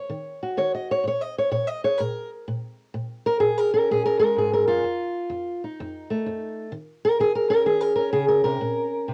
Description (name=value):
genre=acoustic country blues, solo or duo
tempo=127 BPM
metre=4/4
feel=swing 66% on 8ths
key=Bb minor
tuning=A4 = 440 Hz
part: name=fingerpicked old ladder-braced acoustic guitar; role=solo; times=0.0-9.1 s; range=F2 to Eb5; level=-24 LUFS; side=equal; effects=cassette tape
room=moderate booth ambience, RT60 0.2 s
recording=home recording on cassette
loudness=-24 LUFS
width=mono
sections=0.0-9.1 A section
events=steel-string acoustic guitar solo 0.0-9.1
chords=0.0 Ebm7; 1.0 Bbm7; 4.8 F7; 6.7 Bbm11; 8.6 Bbm